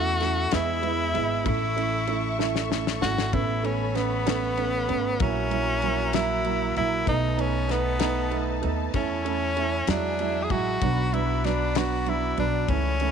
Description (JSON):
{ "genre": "six-eight pop ballad", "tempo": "64 BPM (dotted quarters)", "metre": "6/8", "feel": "straight", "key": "A major", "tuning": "A4 = 441 Hz", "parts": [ { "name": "edgy tenor saxophone", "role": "melody", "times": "0.0-13.1 s", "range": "B3 to G#4", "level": "-28 LUFS", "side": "left 2 dB", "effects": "none" }, { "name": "dark baby grand piano", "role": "accompaniment", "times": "0.0-13.1 s", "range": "E3 to E4", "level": "-28 LUFS", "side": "right 14 dB", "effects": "none" }, { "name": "clear studio string section", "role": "sustained chords", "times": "0.0-13.1 s", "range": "D#4 to C#6", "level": "-35 LUFS", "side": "left 4 dB", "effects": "none" }, { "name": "upright bass", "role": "bass", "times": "0.0-13.1 s", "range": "G#1 to E2", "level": "-29 LUFS", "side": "left 2 dB", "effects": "none" }, { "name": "damped 70s drum kit", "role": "drums", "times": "0.2-13.1 s", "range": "kick drum, ride cymbal, snare drum", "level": "-32 LUFS", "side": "left 7 dB", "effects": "none" } ], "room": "light reverb, small room ambience", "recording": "1960s-style stereo with parts hard left and right", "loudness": "-23 LUFS", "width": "side -7 dB against mid", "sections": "0.0-13.1 A section", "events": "drum fill 2.4-3.3", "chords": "0.0 A/E; 0.5 E; 1.5 A; 3.3 Aadd9; 5.2 F#7/A#; 7.1 B7; 8.9 A/E; 9.9 Eadd9; 10.8 Bm" }